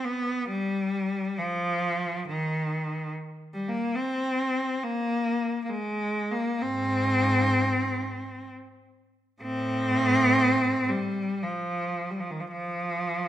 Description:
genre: classical, free, expressive piece for unaccompanied cello.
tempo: 52-72 BPM.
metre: 3/4.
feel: rubato.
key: unclear.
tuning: A4 = 440 Hz.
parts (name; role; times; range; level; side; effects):
clear cello; solo; 0.0-13.3 s; Ab2 to C4; -25 LUFS; equal; none.
room: moderate recital hall reverb, RT60 1.4 s.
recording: none.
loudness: -25 LUFS.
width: side -12 dB against mid.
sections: 0.0-13.3 A section.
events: none.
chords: none.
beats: 0.48 | 1.38 2.27 3.12 | 3.96 4.84 5.71 | 6.64 7.56 8.51 | 9.43 10.40 11.43 | 12.52.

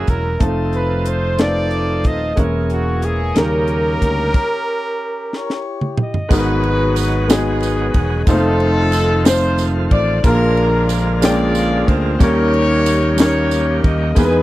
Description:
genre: slow gospel.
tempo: 61 BPM (dotted quarters).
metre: 6/8.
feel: straight.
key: unclear.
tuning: A4 = 440 Hz.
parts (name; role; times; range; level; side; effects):
bright trumpet; melody; 0.0-5.7 s; F#4 to Eb5; -23 LUFS; right 3 dB; none.
warm horn section; melody; 0.0-14.4 s; B3 to D#5; -21 LUFS; left 2 dB; none.
warm concert grand piano; accompaniment; 0.0-14.4 s; G#2 to G5; -19 LUFS; equal; none.
bright tonewheel organ; sustained chords; 0.0-14.4 s; D3 to A4; -26 LUFS; right 4 dB; slow rotary speaker, overdrive.
fingered electric bass; bass; 0.0-14.4 s; Eb1 to E2; -19 LUFS; equal; none.
tight funk drum kit; drums; 0.1-14.3 s; crash cymbal, hi-hat, kick drum, ride cymbal, snare drum, toms; -15 LUFS; equal; none.
tambourine; percussion; 6.3-14.4 s; none; -29 LUFS; right 18 dB; none.
room: little or no reverb.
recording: dry, close 1970s-style studio recording.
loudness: -14 LUFS.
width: side -16 dB against mid.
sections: 0.0-6.3 A section; 6.3-14.4 B section.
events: stop 4.3-6.3; drum fill 5.3-6.3.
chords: 0.4 F7; 2.4 A#m7b5/E; 3.4 D#7; 4.3 Gdim/Db; 5.3 Em6; 6.3 G#m7; 8.3 F7; 10.2 A#7; 12.2 D#7.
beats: | 0.40 1.39 | 2.37 3.36 | 4.34 5.32 | 6.31 7.29 | 8.27 9.25 | 10.24 11.22 | 12.20 13.18 | 14.16.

